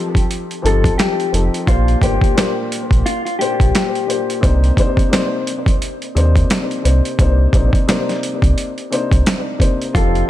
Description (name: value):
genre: hip hop, boom-bap hip-hop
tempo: 87 BPM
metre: 4/4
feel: swing 59% on 16ths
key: C dorian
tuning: A4 = 440 Hz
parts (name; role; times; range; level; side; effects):
- dark upright piano; accompaniment; 0.0-10.3 s; Bb2 to C5; -20 LUFS; left 2 dB; cassette tape, high-pass filter, low-pass filter, analog delay
- boom bap sampler-style drum kit; drums; 0.1-10.3 s; hi-hat, kick drum, snare drum; -17 LUFS; equal; overdrive
- sub bass with octave; bass; 0.6-10.2 s; F1 to Eb2; -15 LUFS; equal; none
- mellow electric guitar; melody; 0.7-4.4, 9.9-10.3 s; F4 to A4; -21 LUFS; left 4 dB; high-pass filter, low-pass filter, analog delay
room: little or no reverb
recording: echo-heavy mix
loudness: -14 LUFS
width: side -13 dB against mid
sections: 0.0-10.3 A section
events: none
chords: 0.0 F7; 1.7 Bb6; 4.4 Cm7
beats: 0.29 0.98 | 1.67 2.36 3.05 3.74 | 4.43 5.12 5.81 6.50 | 7.19 7.88 8.57 9.26 | 9.95